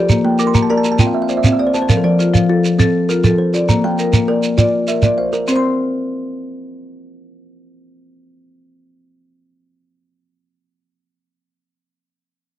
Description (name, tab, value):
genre	southern african traditional, mbira-style interlocking cycle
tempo	134 BPM (dotted quarters)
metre	12/8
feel	straight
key	unclear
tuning	A4 = 440 Hz
part	kalimba	arpeggios	0.0-10.4 s	F3 to D6	-19 LUFS	right 4 dB	none
part	marimba with medium hard mallets	arpeggios	0.0-10.4 s	F3 to C6	-16 LUFS	left 4 dB	none
part	shekere	percussion	0.1-5.6 s	none	-15 LUFS	right 2 dB	none
room	light reverb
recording	dry, close 1970s-style studio recording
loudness	-13 LUFS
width	side -13 dB against mid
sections	0.0-5.5 A section; 5.5-9.1 B section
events	kalimba fill 0.2-1.9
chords	0.1 Bb; 1.0 C; 1.9 F; 3.7 Bb; 5.5 N.C.